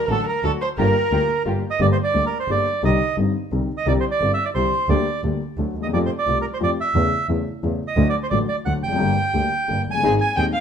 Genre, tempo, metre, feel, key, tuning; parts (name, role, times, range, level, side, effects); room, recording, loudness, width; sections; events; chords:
tango; 175 BPM; 3/4; rubato; G minor; A4 = 440 Hz
bandoneon; melody; 0.0-10.6 s; A4 to Ab5; -22 LUFS; right 4 dB
warm violin; second line; 0.0-1.4, 9.9-10.6 s; A4 to Ab5; -23 LUFS; left 1 dB
warm upright piano; accompaniment; 0.1-10.5 s; Eb1 to Ab4; -24 LUFS; left 5 dB
muted studio string section; stabs; 0.1-1.6, 10.0-10.5 s; A3 to Ab4; -32 LUFS; right 1 dB
rich double bass; bass; 0.1-10.5 s; F1 to F2; -24 LUFS; right 2 dB
moderate large studio reverb, RT60 1.2 s; minimal, uncompressed stereo recording; -18 LUFS; side -8 dB against mid
0.0-1.8 A section; 1.8-10.6 A section
0.0 D; 0.8 Gm7; 1.8 Gm; 2.8 Cmadd9; 3.9 Cadd9; 4.9 Gm/D; 5.6 D; 5.9 F; 6.9 A/E; 8.0 D; 9.0 Gm; 10.0 Ab